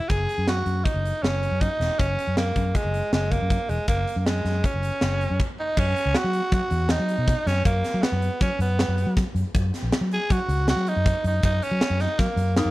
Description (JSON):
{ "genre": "progressive instrumental, band music in an uneven meter", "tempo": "159 BPM", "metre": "5/4", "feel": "straight", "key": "F# mixolydian", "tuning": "A4 = 440 Hz", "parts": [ { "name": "breathy tenor saxophone", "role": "melody", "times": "0.0-12.7 s", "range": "G#3 to G#4", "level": "-26 LUFS", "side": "right 1 dB", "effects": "slapback echo" }, { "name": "fingered electric bass", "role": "bass", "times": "0.1-12.7 s", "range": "E1 to F#3", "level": "-24 LUFS", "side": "equal", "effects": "none" }, { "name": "tight metal drum kit", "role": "drums", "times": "0.1-12.6 s", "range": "crash cymbal, hi-hat, kick drum, snare drum", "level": "-26 LUFS", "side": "equal", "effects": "none" }, { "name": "vibraphone with medium hard mallets", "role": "second line", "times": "12.6-12.7 s", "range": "D#4", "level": "-25 LUFS", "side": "left 2 dB", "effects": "none" } ], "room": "little or no reverb", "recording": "none", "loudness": "-21 LUFS", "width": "side -18 dB against mid", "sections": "0.0-5.8 A section; 5.8-12.7 B section", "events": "stop 5.4-5.8", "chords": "0.0 F#add9; 5.8 F#sus4; 9.5 D#m", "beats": "| 0.10 0.48 0.86 1.23 1.61 | 1.99 2.37 2.74 3.12 3.50 | 3.88 4.25 4.63 5.01 5.39 | 5.77 6.14 6.52 6.90 7.28 | 7.65 8.03 8.41 8.79 9.16 | 9.54 9.92 10.30 10.67 11.05 | 11.43 11.80 12.18 12.56" }